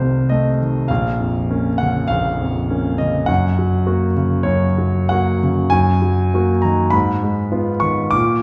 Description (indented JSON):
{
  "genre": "classical, romantic character piece for solo piano",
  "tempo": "100 BPM",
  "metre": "4/4",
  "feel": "rubato",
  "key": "unclear",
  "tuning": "A4 = 437 Hz",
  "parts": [
    { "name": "warm concert grand piano", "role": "solo", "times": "0.0-8.4 s", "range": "Bb1 to D6", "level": "-18 LUFS", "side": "equal", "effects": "none" }
  ],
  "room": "wet recital hall reverb, RT60 1.4 s",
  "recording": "heard from further back in the room",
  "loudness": "-18 LUFS",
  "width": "mono",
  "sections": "0.0-8.4 A section",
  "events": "none",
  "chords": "0.0 F7/C; 0.9 Bbm; 3.3 Gb; 5.7 Ebm/Gb; 6.9 Fm7b5/Ab",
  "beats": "0.30 | 0.90 1.50 2.10 2.70 | 3.29 3.87 4.47 5.11 | 5.73 6.34 6.94 7.53 | 8.13"
}